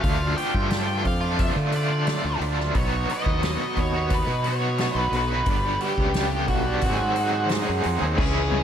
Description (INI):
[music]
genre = psychedelic rock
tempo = 88 BPM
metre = 4/4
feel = straight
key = unclear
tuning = A4 = 440 Hz
[part]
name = octave-fuzz lead guitar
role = melody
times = 0.0-8.6 s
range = F#4 to G5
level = -28 LUFS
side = equal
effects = distortion, ping-pong delay
[part]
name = pedal harmonium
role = sustained chords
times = 0.0-8.6 s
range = E3 to B#5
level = -32 LUFS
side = right 5 dB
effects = none
[part]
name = overdriven electric guitar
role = riff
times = 0.0-8.6 s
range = G2 to G#4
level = -27 LUFS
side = equal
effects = tremolo
[part]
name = fuzz fingered electric bass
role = bass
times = 0.0-8.6 s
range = G1 to D3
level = -26 LUFS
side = equal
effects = overdrive
[part]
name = soft-mallet drum kit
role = drums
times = 0.0-8.3 s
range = crash cymbal, hi-hat, kick drum, snare drum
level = -28 LUFS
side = equal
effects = none
[part]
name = congas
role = percussion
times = 8.5-8.6 s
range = none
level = -29 LUFS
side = left 3 dB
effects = none
[sound]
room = light reverb, studio ambience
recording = none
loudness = -21 LUFS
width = side -9 dB against mid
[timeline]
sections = 0.0-8.2 A section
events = none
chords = 0.0 Dm; 2.8 B; 5.5 G; 6.8 G#7